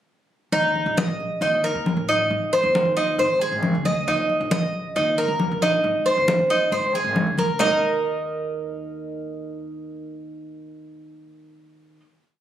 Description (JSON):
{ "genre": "latin, Cuban son and guajira", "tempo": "136 BPM", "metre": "4/4", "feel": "straight", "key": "unclear", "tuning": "A4 = 439 Hz", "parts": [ { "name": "Cuban tres", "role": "arpeggios", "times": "0.5-12.0 s", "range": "Eb4 to Eb5", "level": "-21 LUFS", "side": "right 1 dB", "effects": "none" }, { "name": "upright bass", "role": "bass", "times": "0.5-12.0 s", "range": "Ab1 to Eb2", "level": "-31 LUFS", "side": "equal", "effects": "none" }, { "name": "congas", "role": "percussion", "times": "0.5-7.7 s", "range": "none", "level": "-26 LUFS", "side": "left 1 dB", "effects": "none" } ], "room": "moderate studio reverb, RT60 0.6 s", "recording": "recorded on a phone in the room, club reverb", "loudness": "-19 LUFS", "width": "side -11 dB against mid", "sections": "0.5-7.6 montuno (vamp); 7.6-11.1 final chord", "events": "none", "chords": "0.5 Eb5; 2.3 Ab; 4.1 Eb5; 5.8 Ab; 7.6 Eb5" }